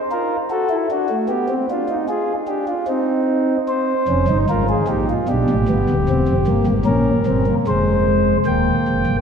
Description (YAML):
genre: classical, baroque-style 4-part fugue for pipe organ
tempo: 75 BPM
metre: 3/4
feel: straight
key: F minor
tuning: A4 = 440 Hz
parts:
  - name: chamber organ, principal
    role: solo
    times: 0.1-9.2 s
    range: D1 to G5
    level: -16 LUFS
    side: equal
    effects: none
room: wet church reverb, RT60 3.5 s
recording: none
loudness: -16 LUFS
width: side -6 dB against mid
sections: 0.0-8.5 A section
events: none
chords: 0.0 N.C.; 0.5 D; 1.3 G7(no3); 2.9 Cm; 3.7 Fm; 5.3 G; 6.1 C7/E; 7.7 Fm; 8.5 Eb